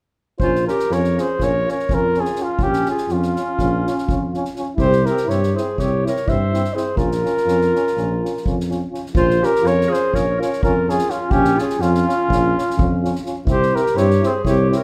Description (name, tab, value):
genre	balkan folk, Balkan brass band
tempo	248 BPM (eighths)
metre	9/8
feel	straight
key	Bb dorian sharp4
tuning	A4 = 440 Hz
part	mellow flugelhorn	melody	0.4-14.8 s	F4 to E5	-22 LUFS	equal	none
part	warm clarinet	second line	0.4-14.8 s	Db4 to C5	-27 LUFS	equal	none
part	clear trombone	accompaniment	0.4-14.8 s	C4 to Db4	-31 LUFS	equal	none
part	mellow French horn	accompaniment	0.4-14.8 s	E4 to F4	-31 LUFS	equal	none
part	mellow tuba	bass	0.4-14.7 s	Bb1 to G2	-24 LUFS	equal	none
part	soft-mallet drum kit	percussion	0.4-14.8 s	kick drum, snare drum	-27 LUFS	equal	none
room	moderate recital hall reverb, RT60 1.7 s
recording	none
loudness	-19 LUFS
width	mono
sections	0.4-9.1 A section; 9.1-14.8 A section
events	none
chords	0.4 Bbm; 4.8 C; 7.0 Bbm; 13.5 C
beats	| 0.40 0.64 0.89 1.13 1.37 1.62 1.86 2.10 2.35 | 2.59 2.84 3.08 3.32 3.57 3.81 4.05 4.30 4.54 | 4.79 5.03 5.27 5.51 5.76 6.00 6.24 6.49 6.73 | 6.97 7.21 7.46 7.70 7.94 8.18 8.42 8.67 8.91 | 9.15 9.39 9.63 9.87 10.11 10.35 10.59 10.83 11.07 | 11.31 11.55 11.79 12.03 12.27 12.51 12.75 12.99 13.23 | 13.47 13.71 13.95 14.19 14.43 14.66